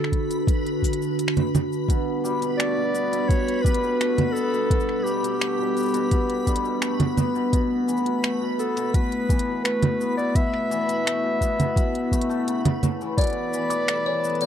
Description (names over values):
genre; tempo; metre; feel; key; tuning
folktronica; 85 BPM; 4/4; straight; unclear; A4 = 438 Hz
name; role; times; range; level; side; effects
clear clarinet; melody; 0.0-14.5 s; G4 to E5; -27 LUFS; equal; tape echo
warbly tape-like pad; sustained chords; 0.0-14.5 s; D3 to B4; -28 LUFS; right 1 dB; chorus, built-in reverb
organic electronic drum kit; drums; 0.0-14.5 s; congas, finger snaps, hi-hat, shaker; -25 LUFS; right 2 dB; overdrive
backwards swelling texture; texture; 0.0-14.5 s; A4 to B5; -37 LUFS; right 1 dB; built-in reverb
electronic kick drum; drums; 0.1-13.3 s; none; -22 LUFS; equal; overdrive
cimbalom; arpeggios; 1.9-14.5 s; B2 to B3; -26 LUFS; left 2 dB; tape echo
music box; second line; 13.2-14.5 s; C#5 to D6; -29 LUFS; left 3 dB; none
room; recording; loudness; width
light reverb; dry, close 1970s-style studio recording; -21 LUFS; side -9 dB against mid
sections
0.0-14.5 A section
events
none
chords
0.0 D; 1.9 Gadd9; 7.5 Aadd9; 13.2 Em7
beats
0.47 1.18 | 1.89 2.59 3.30 4.00 | 4.71 5.42 6.12 6.83 | 7.53 8.24 8.94 9.65 | 10.36 11.06 11.77 12.47 | 13.18 13.88